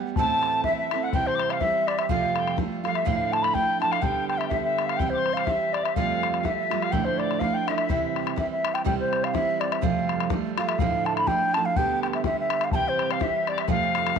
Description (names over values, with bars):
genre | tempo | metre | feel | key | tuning
celtic folk, Celtic polka | 124 BPM | 2/4 | swing 56% on 8ths | C major | A4 = 440 Hz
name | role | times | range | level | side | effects
picked steel-string acoustic guitar | accompaniment | 0.0-14.2 s | D2 to G4 | -28 LUFS | right 10 dB | none
hollow baroque flute | melody | 0.2-14.2 s | C5 to B5 | -25 LUFS | equal | none
tin whistle | second line | 0.2-8.4, 12.7-14.2 s | D5 to D6 | -31 LUFS | left 12 dB | none
bodhran | percussion | 0.2-14.2 s | none | -29 LUFS | left 6 dB | none
room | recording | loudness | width
moderate plate reverb, RT60 2.5 s | 1960s-style stereo with parts hard left and right | -22 LUFS | side -6 dB against mid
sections
0.0-1.1 A section; 1.1-8.9 B section; 8.9-14.2 B section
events
none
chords
0.2 Am; 1.1 C; 2.1 Fadd9; 3.1 Dmadd9; 4.0 G/D; 5.0 C; 6.0 Fadd9; 6.9 Dmadd9; 7.9 C; 9.8 Fadd9; 10.8 Dmadd9; 11.8 G/D; 12.7 C; 13.7 Fadd9